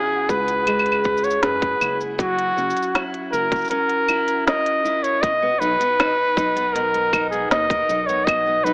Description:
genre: folktronica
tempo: 79 BPM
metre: 4/4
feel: straight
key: B major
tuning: A4 = 440 Hz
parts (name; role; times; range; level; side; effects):
- clear flugelhorn; melody; 0.0-8.7 s; F#4 to D#5; -19 LUFS; equal; none
- fingerpicked steel-string acoustic guitar; arpeggios; 0.0-8.7 s; B2 to A#4; -26 LUFS; equal; none
- flickering grainy texture; texture; 0.0-5.3 s; F#4 to F#5; -39 LUFS; equal; none
- round analog bass; bass; 0.3-8.7 s; F#1 to F#2; -33 LUFS; equal; none
- electronic kick drum; drums; 0.3-8.4 s; none; -23 LUFS; equal; overdrive
- organic electronic drum kit; drums; 0.3-8.7 s; claves, hi-hat, shaker, snare drum; -23 LUFS; equal; overdrive
room: light reverb, digital ambience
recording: AM radio sound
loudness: -17 LUFS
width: side -35 dB against mid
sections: 0.0-5.2 A section; 5.2-8.7 B section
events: none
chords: 0.0 C#m7; 2.2 F#7; 5.2 Bmaj7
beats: 0.68 1.44 | 2.20 2.96 3.71 4.47 | 5.23 5.99 6.75 7.51 | 8.27

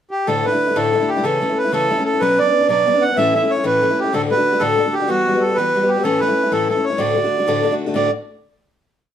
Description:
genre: celtic folk, Celtic jig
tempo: 126 BPM (dotted quarters)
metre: 6/8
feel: straight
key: D major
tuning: A4 = 440 Hz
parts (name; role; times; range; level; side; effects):
- accordion; melody; 0.1-8.1 s; F#4 to F#5; -17 LUFS; right 3 dB; none
- picked steel-string acoustic guitar; accompaniment; 0.3-8.1 s; D2 to F#4; -19 LUFS; left 4 dB; none
room: moderate studio reverb, RT60 0.7 s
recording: dark, warm production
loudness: -15 LUFS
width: side -9 dB against mid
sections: 0.0-0.3 pickup bar; 0.3-7.9 A section; 7.9-8.9 final chord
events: none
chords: 0.3 Dsus2; 1.2 A/C#; 2.2 Bmadd9; 3.2 A; 4.1 D; 5.1 Emadd9; 6.0 A; 7.0 D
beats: | 0.27 0.76 | 1.25 1.73 | 2.21 2.70 | 3.18 3.66 | 4.14 4.62 | 5.10 5.57 | 6.05 6.52 | 7.00 7.47 | 7.94

